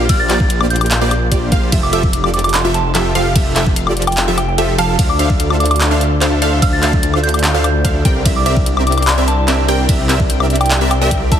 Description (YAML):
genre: future bass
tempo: 147 BPM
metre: 4/4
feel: half-time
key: F major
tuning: A4 = 440 Hz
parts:
  - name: wide unison pluck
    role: arpeggios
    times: 0.0-11.4 s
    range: F4 to G5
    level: -25 LUFS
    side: right 2 dB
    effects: sidechain pumping, ping-pong delay
  - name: supersaw stab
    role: riff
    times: 0.0-11.4 s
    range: F3 to G5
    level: -19 LUFS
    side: right 1 dB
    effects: sidechain pumping, ping-pong delay
  - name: wide detuned saw bass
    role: bass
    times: 0.0-11.4 s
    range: F1 to D2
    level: -17 LUFS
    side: equal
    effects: chorus, sidechain pumping
  - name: soft synth bell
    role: melody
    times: 0.1-11.4 s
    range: G5 to A6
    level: -21 LUFS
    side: right 1 dB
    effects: chorus, phaser, sidechain pumping, digital delay
  - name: dubstep drum kit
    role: drums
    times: 0.1-11.4 s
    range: handclaps, hi-hat, ride cymbal, woodblock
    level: -19 LUFS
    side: left 2 dB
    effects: overdrive
  - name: electronic kick drum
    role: drums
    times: 0.1-11.4 s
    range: none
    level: -15 LUFS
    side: equal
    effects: overdrive
  - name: concert harp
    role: arpeggios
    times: 5.0-11.4 s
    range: D4 to D5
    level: -24 LUFS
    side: left 5 dB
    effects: sidechain pumping, ping-pong delay
room: light reverb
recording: heavily compressed radio sound, multiband compression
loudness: -12 LUFS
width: side -9 dB against mid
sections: 0.0-11.4 A section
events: kick drops out 4.2-5.0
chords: 0.0 Bb69; 1.7 Fmaj9; 5.0 Dm9; 8.1 C9